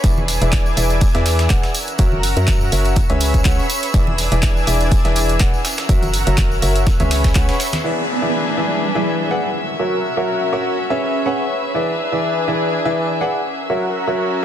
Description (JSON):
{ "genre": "piano house", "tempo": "123 BPM", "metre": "4/4", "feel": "swing 55% on 16ths", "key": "E mixolydian", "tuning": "A4 = 439 Hz", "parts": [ { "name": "analog string pad", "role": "sustained chords", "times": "0.0-14.4 s", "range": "A#4 to E6", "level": "-26 LUFS", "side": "equal", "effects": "ensemble chorus, sidechain pumping" }, { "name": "clear upright piano", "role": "riff", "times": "0.0-14.4 s", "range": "E3 to F#5", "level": "-21 LUFS", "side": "equal", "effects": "sidechain pumping, digital delay" }, { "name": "organ-like FM bass", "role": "bass", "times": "0.0-7.5 s", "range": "E1 to F#2", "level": "-19 LUFS", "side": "equal", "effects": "sidechain pumping" }, { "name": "dusty soul sampler-style drum kit", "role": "drums", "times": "0.0-7.8 s", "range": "hi-hat, snare drum", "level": "-30 LUFS", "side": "right 1 dB", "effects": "none" }, { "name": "electronic kick drum", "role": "drums", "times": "0.0-7.5 s", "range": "none", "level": "-16 LUFS", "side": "equal", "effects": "none" }, { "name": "punchy analog drum machine", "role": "drums", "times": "0.0-7.8 s", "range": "handclaps, hi-hat", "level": "-25 LUFS", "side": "right 1 dB", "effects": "none" }, { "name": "tambourine and congas", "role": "percussion", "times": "0.0-7.8 s", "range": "none", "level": "-28 LUFS", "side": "right 1 dB", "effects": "none" }, { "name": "rich chamber string section", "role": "texture", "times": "0.0-14.4 s", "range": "C#4 to E5", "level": "-25 LUFS", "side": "left 2 dB", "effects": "sidechain pumping" }, { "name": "downlifter", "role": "sound effects", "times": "7.8-11.7 s", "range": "none", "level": "-25 LUFS", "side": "right 2 dB", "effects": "none" } ], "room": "light reverb, digital ambience", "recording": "dense, heavily limited modern master", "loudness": "-15 LUFS", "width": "side -10 dB against mid", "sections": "0.0-7.8 A section; 7.8-14.4 B section", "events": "none", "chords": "0.0 E7; 1.7 F#7; 3.0 C#m7; 3.9 E7; 5.6 F#7; 6.9 C#m7; 7.8 E7; 9.6 F#7; 10.8 C#m7; 11.7 E7; 13.5 F#7" }